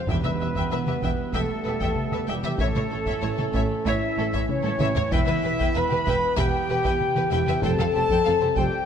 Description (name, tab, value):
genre	cinematic, epic orchestral film score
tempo	96 BPM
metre	4/4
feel	straight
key	unclear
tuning	A4 = 439 Hz
part	silver concert flute	second line	0.0-8.9 s	G4 to B5	-33 LUFS	left 3 dB	none
part	dark French horn section	sustained chords	0.0-8.9 s	G3 to B4	-28 LUFS	left 4 dB	none
part	warm trombone section	sustained chords	0.0-8.9 s	E3 to C#4	-37 LUFS	right 6 dB	none
part	dark trumpet section	stabs	0.0-8.9 s	G4 to B5	-30 LUFS	equal	none
part	warm symphonic violin section	melody	0.1-8.6 s	A4 to G5	-35 LUFS	left 4 dB	none
part	warm symphonic violin section	second line	0.1-8.6 s	G4 to E5	-37 LUFS	left 4 dB	none
part	warm symphonic viola section	accompaniment	0.1-8.6 s	A4 to E5	-34 LUFS	right 1 dB	none
part	clear symphonic double bass section	bass	0.1-8.6 s	E1 to A1	-31 LUFS	right 5 dB	none
part	rich symphonic cello section	bass	0.1-8.6 s	E2 to A2	-31 LUFS	right 3 dB	none
part	taiko ensemble	drums	0.1-8.9 s	none	-28 LUFS	equal	none
part	timpani	percussion	0.1-1.0 s	E2	-32 LUFS	right 2 dB	none
room	moderate scoring stage reverb, RT60 2.0 s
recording	none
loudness	-21 LUFS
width	side -8 dB against mid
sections	0.0-8.9 A section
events	drum fill 4.5-5.1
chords	0.1 Em; 2.6 A; 5.1 Em; 7.6 Fadd9